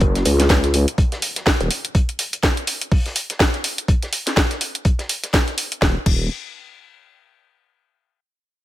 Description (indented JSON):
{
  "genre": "bass house",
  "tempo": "124 BPM",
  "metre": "4/4",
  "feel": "swing 58% on 16ths",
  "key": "unclear",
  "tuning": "A4 = 443 Hz",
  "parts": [
    { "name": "vowel-sweep wobble bass", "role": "bass", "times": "0.0-1.7, 5.8-6.3 s", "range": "Eb1 to Db2", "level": "-18 LUFS", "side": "equal", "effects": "chorus, overdrive, sidechain pumping" },
    { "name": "electronic kick drum", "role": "drums", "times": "0.0-6.2 s", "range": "none", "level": "-18 LUFS", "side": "equal", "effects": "none" },
    { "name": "warm soul drum kit", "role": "drums", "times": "0.0-5.7 s", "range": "hi-hat, snare drum", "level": "-31 LUFS", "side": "left 1 dB", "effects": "high-pass filter on hats, high-pass filter on snare, high-pass filter on room" },
    { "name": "downlifter", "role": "sound effects", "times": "0.0-1.9 s", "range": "none", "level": "-35 LUFS", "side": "left 1 dB", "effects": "none" },
    { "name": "house drum kit", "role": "drums", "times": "0.2-6.2 s", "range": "crash cymbal, hi-hat, snare drum", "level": "-20 LUFS", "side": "equal", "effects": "none" }
  ],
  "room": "little or no reverb",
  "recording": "none",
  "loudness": "-17 LUFS",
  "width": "side -15 dB against mid",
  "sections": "0.0-5.8 A section; 5.8-7.8 B section",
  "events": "none",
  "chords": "none"
}